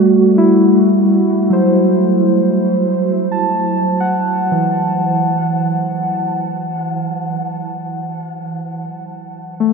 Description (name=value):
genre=ambient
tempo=65 BPM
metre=4/4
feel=straight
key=unclear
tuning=A4 = 440 Hz
part: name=muted felt-like synth keys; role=solo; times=0.0-9.7 s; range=E3 to A5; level=-13 LUFS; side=right 1 dB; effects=chorus, diffuse ambient delay
room=wet cathedral reverb, RT60 6.6 s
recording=in a vast, echoing space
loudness=-13 LUFS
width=side -4 dB against mid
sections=0.0-9.6 A section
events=none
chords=0.0 C5; 2.2 Esus24